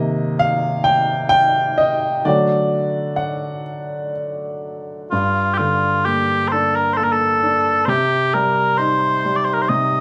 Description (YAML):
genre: celtic folk, Celtic slow air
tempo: 65 BPM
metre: 3/4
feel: rubato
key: G minor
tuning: A4 = 440 Hz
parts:
  - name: warm upright piano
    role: accompaniment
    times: 0.0-10.0 s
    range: G2 to G5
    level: -21 LUFS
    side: equal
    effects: none
  - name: mellow small bagpipes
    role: melody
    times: 5.1-10.0 s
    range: F4 to Eb5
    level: -19 LUFS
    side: equal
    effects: none
room: moderate large studio reverb, RT60 0.9 s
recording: band playing live in one room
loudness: -18 LUFS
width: mono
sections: 0.0-5.1 A section; 5.1-10.0 B section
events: upright piano solo 0.0-5.1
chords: 0.0 Cm7; 2.3 D; 5.1 Gm; 7.9 Cm